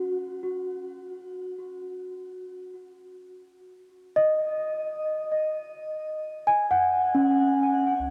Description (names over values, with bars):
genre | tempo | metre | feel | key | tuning
ambient | 52 BPM | 3/4 | straight | unclear | A4 = 439 Hz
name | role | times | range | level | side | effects
celesta | arpeggios | 0.0-8.1 s | C#4 to G#5 | -27 LUFS | equal | tape echo, shimmer reverb
warm sub bass | bass | 8.0-8.1 s | C#2 | -38 LUFS | equal | none
room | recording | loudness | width
wet huge ambient reverb, RT60 7.6 s | dark, warm production | -26 LUFS | mono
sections
0.0-8.0 A section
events
none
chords
0.0 C#sus4; 1.1 N.C.; 4.5 C#sus24